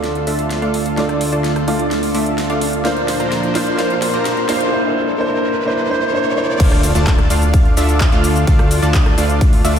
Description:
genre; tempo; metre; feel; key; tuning
EDM, festival progressive house; 128 BPM; 4/4; straight; D minor; A4 = 440 Hz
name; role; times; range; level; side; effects
clear grand piano; accompaniment; 0.0-6.6 s; A3 to D5; -19 LUFS; right 1 dB; vintage 12-bit sampler grit, sidechain pumping, tape echo
lush unison pad; sustained chords; 0.0-9.8 s; D2 to C5; -24 LUFS; equal; chorus, sidechain pumping
supersaw stab; riff; 0.0-9.8 s; A3 to Bb5; -20 LUFS; right 1 dB; sidechain pumping, low-pass filter, tape echo
big-room dance drum kit; drums; 0.0-9.8 s; crash cymbal, handclaps, hi-hat, ride cymbal, rim click, shaker, snare drum; -25 LUFS; equal; overdrive, high-pass filter on hats, studio reverb, high-pass filter on snare, high-pass filter on cymbals, high-pass filter on perc
riser and impact; sound effects; 2.5-8.5 s; none; -27 LUFS; equal; none
fat analog bass; bass; 6.6-9.8 s; D2; -17 LUFS; equal; sidechain pumping
electronic kick drum; drums; 6.6-9.5 s; none; -13 LUFS; equal; studio reverb
room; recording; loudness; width
wet lush hall reverb, RT60 2.0 s; dreamy mix soaked in reverb; -13 LUFS; side -8 dB against mid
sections
0.0-6.6 A section; 6.6-9.8 B section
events
build-up 0.0-6.6; drum fill 0.0-4.7; filter sweep on supersaw synth 0.0-6.6; riser 2.5-6.6; drop 6.6-9.8; impact 6.6-8.5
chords
0.0 Dm; 2.8 Bbadd9; 4.7 C; 6.6 Dm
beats
0.04 0.51 | 0.97 1.44 1.91 2.38 | 2.85 3.32 3.79 4.25 | 4.72 5.19 5.66 6.13 | 6.60 7.07 7.54 8.01 | 8.47 8.94 9.41

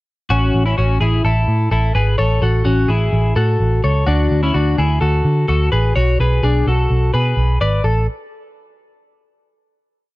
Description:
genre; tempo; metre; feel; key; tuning
indie pop; 127 BPM; 4/4; straight; A major; A4 = 440 Hz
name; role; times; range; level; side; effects
twelve-string electric guitar; arpeggios; 0.3-8.1 s; C#4 to D5; -18 LUFS; left 2 dB; none
vintage muted picked electric bass; bass; 0.3-8.1 s; G#1 to D3; -15 LUFS; right 1 dB; none
room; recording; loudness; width
little or no reverb; dry, close 1970s-style studio recording; -14 LUFS; side -19 dB against mid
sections
0.3-7.8 verse; 7.8-9.7 final note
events
none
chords
0.3 A; 4.1 Dadd9; 6.0 Bm; 7.8 N.C.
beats
| 0.30 0.77 1.24 1.72 | 2.19 2.66 3.13 3.60 | 4.07 4.54 5.02 5.49 | 5.96 6.43 6.90 7.37 | 7.84

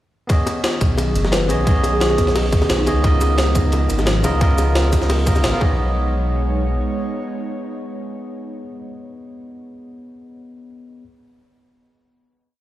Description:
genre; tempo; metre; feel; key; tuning
liquid drum and bass; 175 BPM; 4/4; straight; B lydian; A4 = 439 Hz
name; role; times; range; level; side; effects
barky tine electric piano; accompaniment; 0.3-11.0 s; C#3 to E#5; -25 LUFS; right 1 dB; digital delay
airy breathy pad; sustained chords; 0.3-8.7 s; D#3 to C#5; -28 LUFS; right 1 dB; chorus, sidechain pumping
crunchy breakbeat drum kit; drums; 0.3-5.5 s; hi-hat, ride cymbal, snare drum; -31 LUFS; equal; high-pass filter on cymbals, high-pass filter on hats, high-pass filter on snare, high-pass filter on room
electronic kick drum; drums; 0.3-5.7 s; none; -17 LUFS; equal; overdrive
jungle sampler-style drum kit; drums; 0.3-5.5 s; cabasa, hi-hat, snare drum; -24 LUFS; equal; none
bongos; percussion; 0.5-5.7 s; none; -29 LUFS; left 4 dB; none
dark detuned saw bass; bass; 0.8-6.8 s; F#1 to C#2; -19 LUFS; equal; none
kalimba; melody; 1.3-3.0 s; D#4 to B4; -25 LUFS; equal; tape echo
room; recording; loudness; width
light reverb, studio reverb; played on a big sound system in a bare room, stone room reverb; -16 LUFS; side -14 dB against mid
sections
0.3-5.8 drop; 5.8-8.5 final hit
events
drop 0.3-5.8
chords
0.3 B69; 3.0 C#13; 5.6 B69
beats
| 0.30 0.64 0.98 1.33 | 1.67 2.01 2.35 2.70 | 3.04 3.38 3.73 4.07 | 4.41 4.75 5.10 5.44 | 5.78 6.13 6.47 6.81 | 7.16 7.50 7.84 8.18

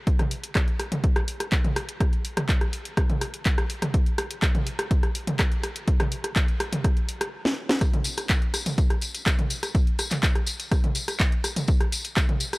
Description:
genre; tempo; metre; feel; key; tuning
techno; 124 BPM; 4/4; straight; none; none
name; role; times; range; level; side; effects
electronic kick drum; drums; 0.1-12.3 s; none; -22 LUFS; equal; none
house drum kit; drums; 0.1-12.6 s; handclaps, hi-hat, rim click, snare drum, toms; -27 LUFS; equal; none
tambourine; percussion; 7.8-12.6 s; none; -31 LUFS; left 2 dB; none
room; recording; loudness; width
little or no reverb; dry, gritty hardware recording; -22 LUFS; side -23 dB against mid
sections
0.0-7.8 A section; 7.8-12.6 B section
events
build-up 0.0-7.8; drum fill 7.4-7.8; drop 7.8-12.6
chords
none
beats
| 0.07 0.55 1.04 1.52 | 2.00 2.49 2.97 3.46 | 3.94 4.42 4.91 5.39 | 5.88 6.36 6.84 7.33 | 7.81 8.29 8.78 9.26 | 9.75 10.23 10.71 11.20 | 11.68 12.17

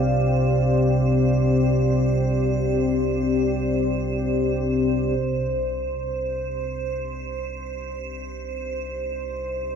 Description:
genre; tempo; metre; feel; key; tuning
ambient; free time; none; none; C minor; A4 = 440 Hz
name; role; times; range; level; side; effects
dark analog pad; sustained chords; 0.0-9.8 s; C4 to F5; -24 LUFS; left 4 dB; chorus
deep rumbling drone; drone; 0.0-9.8 s; C2 to C3; -25 LUFS; right 2 dB; built-in reverb
icy glass pad; texture; 0.0-9.8 s; C5; -29 LUFS; right 2 dB; chorus, built-in reverb
room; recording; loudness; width
wet plate reverb, RT60 2.7 s; dreamy mix soaked in reverb; -21 LUFS; side -7 dB against mid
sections
0.0-5.2 A section; 5.2-9.8 B section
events
none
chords
0.0 C5; 5.2 Cm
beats
free time

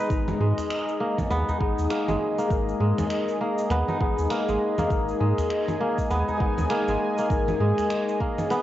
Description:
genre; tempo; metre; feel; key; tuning
organic downtempo; 100 BPM; 4/4; swing 60% on 16ths; G# minor; A4 = 441 Hz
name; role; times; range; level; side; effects
barky tine electric piano; accompaniment; 0.0-8.6 s; G#3 to A#5; -30 LUFS; left 7 dB; phaser, sidechain pumping, cassette tape, analog delay
warm analog pad; sustained chords; 0.0-8.6 s; G#4 to G#5; -29 LUFS; right 2 dB; chorus, sidechain pumping, cassette tape
kora; arpeggios; 0.0-8.6 s; G#3 to B4; -28 LUFS; right 1 dB; low-pass filter, cassette tape, analog delay
warm sub bass; bass; 0.1-7.7 s; G#1 to G#2; -26 LUFS; right 1 dB; sidechain pumping
electronic cabasa, congas and finger snaps; drums; 0.1-8.6 s; none; -34 LUFS; right 2 dB; cassette tape
electronic kick drum; drums; 0.1-8.3 s; none; -27 LUFS; right 1 dB; cassette tape
udu; percussion; 0.6-7.9 s; none; -33 LUFS; left 1 dB; none
room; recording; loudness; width
moderate spring reverb, RT60 2.7 s; home recording on cassette, nothing above 7.7 kHz; -22 LUFS; side -13 dB against mid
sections
0.0-8.6 A section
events
filter sweep on kora 0.0-8.6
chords
0.0 G#madd9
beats
| 0.10 0.70 1.30 1.90 | 2.50 3.10 3.70 4.30 | 4.90 5.50 6.10 6.70 | 7.30 7.90 8.50

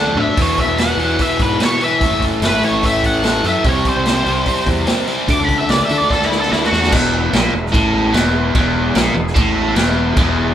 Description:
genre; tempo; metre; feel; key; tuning
blues rock power trio and southern rock; 147 BPM; 4/4; straight; E mixolydian; A4 = 437 Hz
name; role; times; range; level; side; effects
octave-fuzz lead guitar; melody; 0.0-6.9 s; E4 to D6; -18 LUFS; equal; wah, distortion
biting overdriven guitar; riff; 0.0-10.5 s; E2 to D4; -17 LUFS; equal; none
fuzz fingered electric bass; bass; 0.0-10.5 s; E1 to D3; -22 LUFS; equal; overdrive
vintage drum kit; drums; 0.1-10.3 s; crash cymbal, hi-hat, kick drum, snare drum, splash cymbal, toms; -19 LUFS; equal; none
overdriven tonewheel organ; sustained chords; 0.4-10.5 s; G#3 to D5; -29 LUFS; right 3 dB; none
room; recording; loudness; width
moderate large studio reverb, RT60 1.3 s; band playing live in one room; -13 LUFS; side -10 dB against mid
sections
0.0-6.9 A section; 6.9-10.5 B section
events
drum fill 0.0-0.4, 6.1-6.9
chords
0.4 E; 2.0 A; 3.6 C; 5.3 D; 6.9 E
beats
| 0.38 0.79 1.20 1.60 | 2.01 2.42 2.83 3.24 | 3.65 4.06 4.47 4.88 | 5.29 5.70 6.10 6.51 | 6.92 7.33 7.74 8.14 | 8.55 8.95 9.36 9.77 | 10.17

